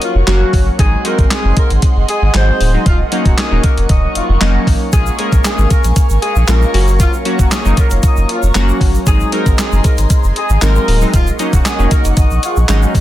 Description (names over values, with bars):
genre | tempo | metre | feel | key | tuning
dance-pop | 116 BPM | 4/4 | straight | unclear | A4 = 439 Hz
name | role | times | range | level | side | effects
clear horn section | melody | 0.0-12.6 s | F3 to Eb5 | -21 LUFS | left 2 dB | tape echo
chorused retro synth keys | accompaniment | 0.0-13.0 s | Gb3 to Ab4 | -20 LUFS | equal | sidechain pumping
airy breathy pad | sustained chords | 0.0-13.0 s | Ab4 to Db6 | -23 LUFS | right 1 dB | chorus, phaser, sidechain pumping
crisp 8-bit digital drum machine | drums | 0.0-13.0 s | handclaps, hi-hat, kick drum, snare drum | -14 LUFS | equal | none
warm sub bass | bass | 0.1-13.0 s | D1 to Bb1 | -13 LUFS | equal | sidechain pumping
egg shaker | percussion | 4.9-13.0 s | none | -31 LUFS | right 6 dB | none
room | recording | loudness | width
digital ambience | dense, heavily limited modern master | -10 LUFS | side -14 dB against mid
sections
0.0-13.0 A section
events
none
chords
0.0 Gb; 0.8 Ab7; 2.9 Ebm7; 4.9 Bbm7; 6.7 Gb; 9.1 Ab7; 11.1 Ebm7; 12.2 Ab7sus4